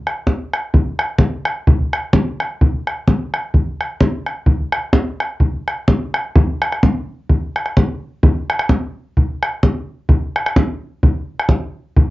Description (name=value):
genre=celtic folk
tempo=128 BPM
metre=2/4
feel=swing 56% on 8ths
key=none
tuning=none
part: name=bodhran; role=percussion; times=0.1-12.1 s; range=none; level=-14 LUFS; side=equal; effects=none
room=moderate small room reverb, RT60 0.5 s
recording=dark, warm production, nothing above 7.5 kHz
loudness=-15 LUFS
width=side -18 dB against mid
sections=0.0-6.3 A section; 6.3-12.1 B section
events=none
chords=none